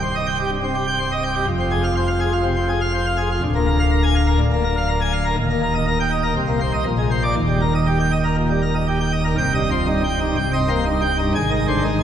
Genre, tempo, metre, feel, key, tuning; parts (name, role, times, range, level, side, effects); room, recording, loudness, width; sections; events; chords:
classical, organ toccata; 123 BPM; 4/4; straight; Eb major; A4 = 440 Hz
pipe organ, plenum; solo; 0.0-12.0 s; C1 to Ab5; -17 LUFS; equal
wet church reverb, RT60 3.8 s; recorded in a church or concert hall; -17 LUFS; side -9 dB against mid
0.0-9.4 A section; 9.4-12.0 B section
0.0 Cm; 1.5 Fm; 3.4 Bb7/D; 5.4 Eb; 6.4 Cm7; 6.9 Bb9; 7.4 Eb; 9.4 Cm; 11.3 Ab